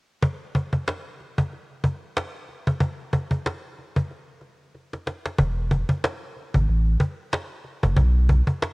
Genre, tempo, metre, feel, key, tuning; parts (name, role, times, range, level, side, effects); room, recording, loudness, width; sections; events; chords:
hip hop, boom-bap hip-hop; 93 BPM; 4/4; swing 57% on 16ths; A4 = 440 Hz
cajon; drums; 0.2-8.7 s; -23 LUFS; equal
warm sub bass; bass; 5.4-8.4 s; E1 to B1; -20 LUFS; equal; tube saturation
studio ambience; home recording on cassette; -22 LUFS; side -29 dB against mid
0.2-5.4 A section; 5.4-8.7 B section
drum fill 4.7-5.4